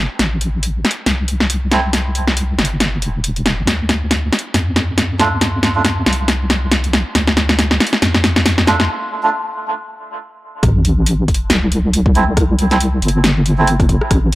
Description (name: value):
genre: deep dubstep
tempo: 138 BPM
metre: 4/4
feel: swing 57% on 16ths, half-time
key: A minor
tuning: A4 = 440 Hz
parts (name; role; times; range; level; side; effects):
- deep soft wobble bass; bass; 0.0-14.3 s; E1 to F2; -16 LUFS; equal; chorus, tube saturation
- deep house drum kit; drums; 0.2-14.3 s; hi-hat, rim click, snare drum; -16 LUFS; equal; overdrive
- melodica; stabs; 1.7-1.8, 5.2-5.8, 8.7-9.3, 12.2-13.7 s; A3 to F4; -20 LUFS; right 2 dB; low-pass filter, dub echo
- electronic kick drum; drums; 10.6-14.2 s; none; -16 LUFS; equal; overdrive
- sub drop; sound effects; 10.6-12.4 s; none; -21 LUFS; equal; none
room: moderate spring reverb, RT60 2.3 s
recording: dry, gritty hardware recording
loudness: -13 LUFS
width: side -17 dB against mid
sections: 0.0-10.6 A section; 10.6-14.3 B section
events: build-up 0.0-10.6; drum fill 0.0-8.9; break 8.9-10.6; drop 10.6-14.3; impact 10.6-12.4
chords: 0.0 Am; 3.7 Dm; 10.6 Am